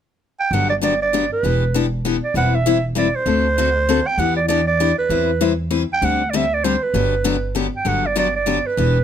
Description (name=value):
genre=acoustic string swing (jazz manouche)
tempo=196 BPM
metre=3/4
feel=swing 58% on 8ths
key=G major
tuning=A4 = 440 Hz
part: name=growling clarinet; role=melody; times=0.4-9.0 s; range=B4 to G5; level=-19 LUFS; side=right 4 dB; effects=none
part: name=picked steel-string acoustic guitar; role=accompaniment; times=0.5-9.0 s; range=D3 to B4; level=-21 LUFS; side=left 8 dB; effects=none
part: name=upright bass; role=bass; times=0.5-9.0 s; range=E1 to E2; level=-22 LUFS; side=right 1 dB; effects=none
room=light reverb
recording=close, detailed microphones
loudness=-16 LUFS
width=side -9 dB against mid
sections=0.5-7.9 A section; 7.9-9.0 A section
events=none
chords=0.0 N.C.; 0.5 Gmaj7; 1.4 Em7; 2.4 Cmaj7/E; 3.3 D7; 4.2 Em7; 5.1 Cmaj7/E; 6.0 D7sus4; 6.9 Gmaj7